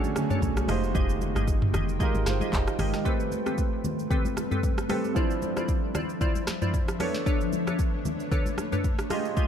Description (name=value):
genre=amapiano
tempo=114 BPM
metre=4/4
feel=swing 55% on 16ths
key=A minor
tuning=A4 = 440 Hz
part: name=warm concert grand piano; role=accompaniment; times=0.0-9.5 s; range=F3 to G5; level=-32 LUFS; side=right 6 dB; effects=none
part: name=granular cloud pad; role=sustained chords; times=0.0-9.5 s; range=D3 to G5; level=-32 LUFS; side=left 1 dB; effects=built-in reverb, sidechain pumping
part: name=afro-pop drum kit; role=drums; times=0.0-9.5 s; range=handclaps, hi-hat, kick drum, rim click, shaker, snare drum, toms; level=-28 LUFS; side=equal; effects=none
part: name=congas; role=percussion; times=0.0-9.2 s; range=none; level=-36 LUFS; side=left 3 dB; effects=none
part: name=glassy wavetable pluck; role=stabs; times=0.3-9.5 s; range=C4 to Eb5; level=-34 LUFS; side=left 3 dB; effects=chorus, ping-pong delay
part: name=deep log drum bass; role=bass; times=0.4-2.9 s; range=F1 to B1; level=-29 LUFS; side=equal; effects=none
room=little or no reverb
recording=dark, warm production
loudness=-24 LUFS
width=side -8 dB against mid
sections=0.0-3.1 A section; 3.1-9.5 B section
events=drop 0.0-3.1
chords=0.0 Bm9; 0.7 Fm9; 3.1 Am9; 5.2 Dm9; 7.0 Bm9